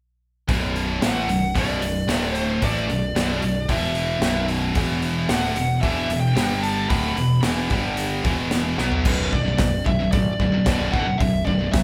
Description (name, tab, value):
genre	heavy metal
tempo	112 BPM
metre	4/4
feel	straight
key	B minor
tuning	A4 = 445 Hz
part	high-gain distorted guitar	riff	0.5-11.8 s	B1 to B3	-28 LUFS	equal	distortion
part	high-gain distorted guitar	riff	0.5-11.8 s	B1 to B3	-27 LUFS	equal	distortion
part	growling picked electric bass	bass	0.5-11.8 s	B0 to B1	-31 LUFS	equal	overdrive
part	modern studio drum kit	drums	0.5-11.8 s	crash cymbal, hi-hat, kick drum, snare drum, toms	-27 LUFS	equal	none
part	high-gain lead guitar	melody	1.1-11.8 s	B4 to B5	-29 LUFS	equal	distortion
room	moderate large studio reverb, RT60 0.8 s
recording	band playing live in one room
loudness	-22 LUFS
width	mono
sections	0.5-9.1 A section; 9.1-11.8 B section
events	drum fill 8.8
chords	0.5 Bm; 2.1 D5; 2.6 Bm; 3.7 E5; 4.2 B5; 4.8 E5; 6.4 G5; 6.9 E5; 7.7 G5; 8.2 E5; 9.1 Bm